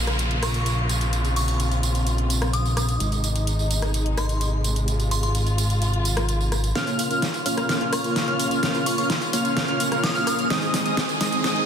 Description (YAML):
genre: EDM, festival progressive house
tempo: 128 BPM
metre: 4/4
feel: straight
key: Bb minor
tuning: A4 = 440 Hz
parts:
  - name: dark studio string section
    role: sustained chords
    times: 0.0-11.7 s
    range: C3 to Ab4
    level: -30 LUFS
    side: equal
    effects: low-pass filter
  - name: fat analog bass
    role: bass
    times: 0.0-6.7 s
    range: Ab1 to Bb1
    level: -23 LUFS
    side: equal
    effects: none
  - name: downlifter and riser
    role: sound effects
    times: 0.0-3.0, 9.4-11.7 s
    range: none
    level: -34 LUFS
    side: equal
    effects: none
  - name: pop drum kit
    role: drums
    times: 0.1-11.7 s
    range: hi-hat, rim click, snare drum, tambourine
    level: -27 LUFS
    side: equal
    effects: overdrive
  - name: glassy synth bell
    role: melody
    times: 0.4-10.6 s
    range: C6 to Eb6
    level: -32 LUFS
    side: left 1 dB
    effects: chorus, ping-pong delay
  - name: wide unison lead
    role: arpeggios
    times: 6.8-11.7 s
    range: Eb6 to F6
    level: -27 LUFS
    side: equal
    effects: analog chorus, ping-pong delay
  - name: dense compressed supersaw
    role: riff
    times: 6.8-11.7 s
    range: Ab3 to F5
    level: -26 LUFS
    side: equal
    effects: low-pass filter, ping-pong delay
room: light reverb, digital ambience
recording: dense, heavily limited modern master, high-pass filter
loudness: -20 LUFS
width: side -8 dB against mid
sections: 0.0-6.8 A section; 6.8-11.7 B section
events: build-up 6.8-11.7; drum fill 6.8-11.7; filter sweep on supersaw synth 6.8-11.7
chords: 0.0 Bbm; 3.0 Ab; 6.8 Bbm; 10.5 Ab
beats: 0.19 0.66 | 1.13 1.60 2.07 2.54 | 3.00 3.47 3.94 4.41 | 4.88 5.35 5.82 6.29 | 6.75 7.22 7.69 8.16 | 8.63 9.10 9.57 10.04 | 10.50 10.97 11.44